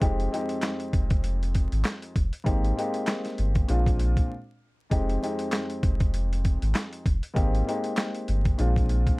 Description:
hip hop, boom-bap hip-hop; 98 BPM; 4/4; swing 56% on 16ths; F dorian; A4 = 444 Hz
dark baby grand piano; accompaniment; 0.0-9.2 s; F2 to G4; -30 LUFS; left 1 dB; cassette tape, high-pass filter, low-pass filter
warm sub bass; bass; 0.0-9.1 s; F1 to Bb1; -25 LUFS; equal; tube saturation
boom bap sampler-style drum kit; drums; 0.0-9.2 s; handclaps, hi-hat, kick drum, snare drum; -26 LUFS; equal
little or no reverb; dry, gritty hardware recording, vinyl crackle; -24 LUFS; side -23 dB against mid
0.0-4.9 A section; 4.9-9.2 A section
break 4.3-4.9
0.0 Fm7; 2.5 Abmaj7; 3.7 Bb7; 4.9 Fm7; 7.4 Abmaj7; 8.6 Bb7
| 0.02 0.63 1.24 1.85 | 2.46 3.08 3.69 4.30 | 4.91 5.53 6.14 6.75 | 7.36 7.97 8.59

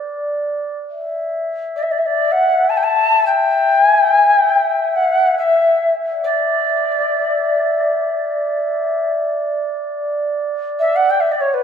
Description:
world meditative, free-time meditation music; free time; A4 = 439 Hz
glass harmonica; texture; 0.0-11.6 s; D5 to E5; -19 LUFS; left 1 dB
mellow Native American-style cedar flute; melody; 1.8-11.6 s; B4 to A5; -14 LUFS; left 1 dB; dub echo
wet spring reverb, RT60 1.4 s, small room ambience; echo-heavy mix; -14 LUFS; side -8 dB against mid
0.3-11.6 A section
free time

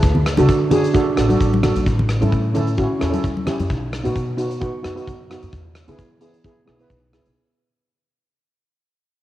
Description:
calypso; 131 BPM; 4/4; swing 54% on 16ths; A4 = 440 Hz
upright bass; bass; 0.0-7.3 s; A1 to E3; -21 LUFS; equal
big rock drum kit; drums; 0.0-7.4 s; hi-hat, kick drum, rim click; -24 LUFS; equal; cassette tape
congas; percussion; 0.1-3.7 s; -23 LUFS; left 2 dB
steel pan; accompaniment; 0.4-7.4 s; B3 to B4; -20 LUFS; right 2 dB; cassette tape
light reverb, studio reverb; home recording on cassette; -16 LUFS; side -14 dB against mid
0.0-7.4 A section
fade-out 0.0-7.4
0.0 D; 1.9 A; 3.7 B; 5.5 E
| 0.03 0.49 0.94 1.40 | 1.86 2.32 2.78 3.23 | 3.69 4.15 4.61 5.07 | 5.53 5.98 6.44 6.90

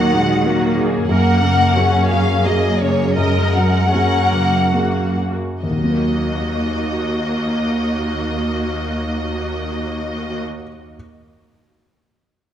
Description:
cinematic; 65-95 BPM; 3/4; rubato; Eb minor; A4 = 440 Hz
rich studio violin section; melody; 0.0-10.4 s; Db5 to Gb5; -22 LUFS; left 2 dB
dark concert grand piano; accompaniment; 0.0-11.0 s; Eb2 to Bb4; -21 LUFS; left 1 dB
rich studio viola section; accompaniment; 0.0-10.4 s; Ab3 to Bb4; -22 LUFS; right 1 dB
rich studio cello section; bass; 0.0-10.4 s; Eb2 to Eb3; -22 LUFS; right 2 dB
wet scoring stage reverb, RT60 2.0 s; -16 LUFS; side -10 dB against mid
0.0-5.6 A section; 5.6-10.9 B section
slowing down 0.1-5.6
0.0 Ebm; 1.1 Gbadd9; 5.6 Ebm
0.45 | 1.10 1.75 2.44 | 3.17 3.93 4.74 | 5.63 6.52 7.39 | 8.27 9.15 10.04

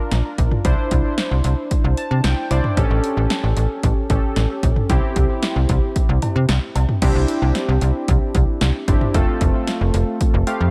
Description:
synth-pop; 113 BPM; 4/4; straight; A4 = 440 Hz
warm analog keys; accompaniment; 0.0-10.7 s; A3 to A5; -26 LUFS; equal; chorus, tape echo
slap-like FM bass; bass; 0.1-10.7 s; F1 to C3; -20 LUFS; equal
punchy analog drum machine; drums; 0.1-10.6 s; cowbell, crash cymbal, hi-hat, kick drum, snare drum, toms; -22 LUFS; equal
light reverb; echo-heavy mix; -19 LUFS; mono
0.0-7.0 A section; 7.0-10.7 B section
synth keys fill 1.7-2.8, 10.2-10.7
0.0 Bb; 0.6 Cadd9; 2.8 A7; 4.9 C; 7.0 Cadd9; 9.1 F
0.12 | 0.65 1.18 1.71 2.24 | 2.77 3.30 3.83 4.37 | 4.90 5.43 5.96 6.49 | 7.02 7.55 8.08 8.61 | 9.14 9.68 10.21

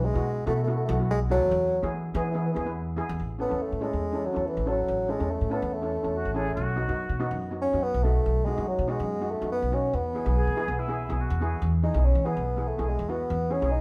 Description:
calypso; 142 BPM; 4/4; straight; E major; A4 = 439 Hz
mellow bassoon; melody; 0.0-13.8 s; E3 to D#4; -30 LUFS; equal
upright bass; bass; 0.0-13.8 s; A1 to E3; -30 LUFS; equal
steel pan; accompaniment; 0.1-13.8 s; B3 to B4; -36 LUFS; equal
concert flute; second line; 6.1-7.4, 10.3-11.7 s; E4 to G#4; -36 LUFS; equal
moderate large studio reverb, RT60 1.2 s; band playing live in one room; -27 LUFS; mono
0.0-3.2 A section; 3.2-13.8 B section
bassoon solo 3.2-13.8
0.0 Bsus4; 1.5 E; 3.2 A; 6.6 B; 9.9 E
0.25 0.67 1.09 | 1.51 1.93 2.35 2.77 | 3.19 3.62 4.04 4.46 | 4.88 5.30 5.72 6.15 | 6.57 6.99 7.41 7.83 | 8.26 8.68 9.10 9.52 | 9.94 10.36 10.78 11.20 | 11.62 12.04 12.46 12.88 | 13.31 13.73

